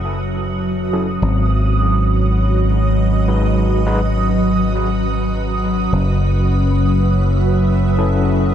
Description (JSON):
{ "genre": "ambient", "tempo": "102 BPM", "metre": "4/4", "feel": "swing 53% on 16ths", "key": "unclear", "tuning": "A4 = 440 Hz", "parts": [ { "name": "soft additive organ-like pad", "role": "sustained chords", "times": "0.0-8.5 s", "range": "F#3 to E5", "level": "-19 LUFS", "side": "right 1 dB", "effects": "ensemble chorus, built-in reverb" }, { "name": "fingered electric bass", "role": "bass", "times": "0.0-8.5 s", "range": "F#1 to G#1", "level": "-16 LUFS", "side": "equal", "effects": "none" }, { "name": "bubbling stepped-filter texture", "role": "texture", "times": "0.0-8.5 s", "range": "D#6", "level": "-27 LUFS", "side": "right 5 dB", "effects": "chorus, built-in reverb" }, { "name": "overdriven tine electric piano", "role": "stabs", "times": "0.9-4.0, 8.0-8.5 s", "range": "F#3 to B4", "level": "-26 LUFS", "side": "left 3 dB", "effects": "fast tremolo, low-pass filter, dub echo" } ], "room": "moderate huge ambient reverb, RT60 7.2 s", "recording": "dark, warm production", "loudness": "-14 LUFS", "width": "side -9 dB against mid", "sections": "0.0-8.5 A section", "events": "filter sweep on tine electric piano 0.0-8.5", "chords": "0.0 F#7(no3); 1.2 G#m7; 5.9 F#m7" }